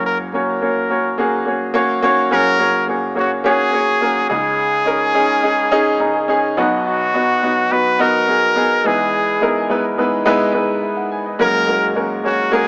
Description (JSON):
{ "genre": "pop", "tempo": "106 BPM", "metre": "4/4", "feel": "straight", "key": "unclear", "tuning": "A4 = 441 Hz", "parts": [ { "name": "bright trumpet", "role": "melody", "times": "0.0-12.7 s", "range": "F#4 to B4", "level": "-17 LUFS", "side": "equal", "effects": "cassette tape" }, { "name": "clear grand piano", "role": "accompaniment", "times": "0.0-12.7 s", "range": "F#1 to A#5", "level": "-16 LUFS", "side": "equal", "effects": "cassette tape" } ], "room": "moderate small room ambience, RT60 0.5 s", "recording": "home recording on cassette, small speaker sound", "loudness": "-14 LUFS", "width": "side -35 dB against mid", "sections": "0.0-2.3 A section; 2.3-12.7 B section", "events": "grand piano fill 5.7-6.9", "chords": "0.0 F#add9; 4.3 C#sus2; 6.6 B; 8.8 Emaj7; 11.4 F#add9" }